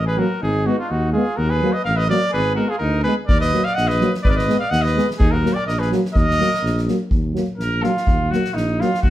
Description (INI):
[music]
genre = balkan folk, Balkan brass band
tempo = 125 BPM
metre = 2/4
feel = swing 54% on 16ths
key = Eb harmonic minor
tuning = A4 = 442 Hz
[part]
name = clear trumpet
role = melody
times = 0.0-6.8 s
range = F4 to Gb5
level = -22 LUFS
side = right 1 dB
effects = none
[part]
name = warm trumpet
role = second line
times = 0.0-9.1 s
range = D4 to Eb5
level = -26 LUFS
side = equal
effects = none
[part]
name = dark tuba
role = bass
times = 0.0-9.1 s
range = Ab1 to Eb2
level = -22 LUFS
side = equal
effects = none
[part]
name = dark euphonium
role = accompaniment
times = 0.2-8.9 s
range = Bb3 to Cb4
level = -26 LUFS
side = left 6 dB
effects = none
[part]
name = mellow trombone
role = accompaniment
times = 0.2-8.9 s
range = Gb3 to Ab3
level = -23 LUFS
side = right 3 dB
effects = none
[part]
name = soft-mallet drum kit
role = percussion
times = 3.3-9.1 s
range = kick drum, snare drum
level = -21 LUFS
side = equal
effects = none
[sound]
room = wet studio reverb, RT60 0.6 s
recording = heard from further back in the room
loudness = -16 LUFS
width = side -13 dB against mid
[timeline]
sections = 0.0-7.1 A section; 7.1-9.1 B section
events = trumpet solo 7.1-9.1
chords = 0.4 Abm; 1.4 Ebm; 2.3 Abm; 3.3 Ebm; 4.2 Abm; 5.2 Ebm